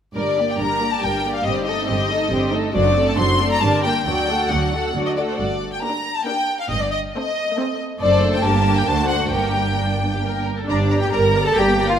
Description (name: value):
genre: quick classical-period movement for string orchestra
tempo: 137 BPM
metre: 3/4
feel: straight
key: G minor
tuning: A4 = 442 Hz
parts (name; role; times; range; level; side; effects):
- warm studio violin section; second line; 0.1-11.9 s; D4 to Bb5; -26 LUFS; left 2 dB; none
- clear studio violin section; melody; 0.2-12.0 s; C5 to C6; -21 LUFS; left 3 dB; none
- rich studio viola section; accompaniment; 0.2-12.0 s; F#3 to F#4; -25 LUFS; right 1 dB; none
- rich studio double bass section; bass; 0.2-12.0 s; F#1 to D2; -24 LUFS; right 3 dB; none
- warm studio cello section; bass; 0.2-11.9 s; D2 to Bb4; -24 LUFS; right 2 dB; none
room: moderate scoring stage reverb, RT60 1.9 s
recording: none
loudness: -17 LUFS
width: side -8 dB against mid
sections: 0.2-10.7 A section; 10.7-12.0 B section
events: none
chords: 0.2 Gm; 1.5 Am7b5/G; 2.8 D7/F#; 3.6 Gm; 4.1 D; 5.4 Gm; 6.7 Am7b5/G; 8.0 D7/F#; 8.4 Gm; 8.9 D7; 9.3 Gm